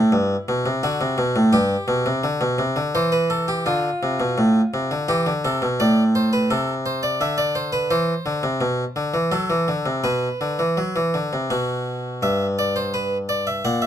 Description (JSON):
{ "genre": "classical, baroque-style two-part invention for harpsichord", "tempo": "84 BPM", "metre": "3/4", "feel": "straight", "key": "C major, E minor from 7.9 s", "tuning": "A4 = 443 Hz", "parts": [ { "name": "harpsichord", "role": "solo", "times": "0.0-13.9 s", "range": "G2 to F#5", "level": "-19 LUFS", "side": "equal", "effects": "none" } ], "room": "little or no reverb", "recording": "close, detailed microphones", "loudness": "-19 LUFS", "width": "side -10 dB against mid", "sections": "0.0-3.7 A section; 3.7-12.2 B section; 12.2-13.9 A section", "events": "none", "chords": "0.0 C; 0.8 D7; 1.5 G; 2.9 C/E; 3.7 Bdim; 5.1 Em; 5.8 Am; 7.2 Cmaj9/D; 7.9 Cmaj9; 9.3 F#dim; 10.0 Bsus4; 11.5 B5; 12.2 Em/G", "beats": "0.13 0.83 | 1.52 2.23 2.95 | 3.66 4.37 5.08 | 5.79 6.50 7.20 | 7.90 8.61 9.31 | 10.04 10.78 11.50 | 12.23 12.94 13.65" }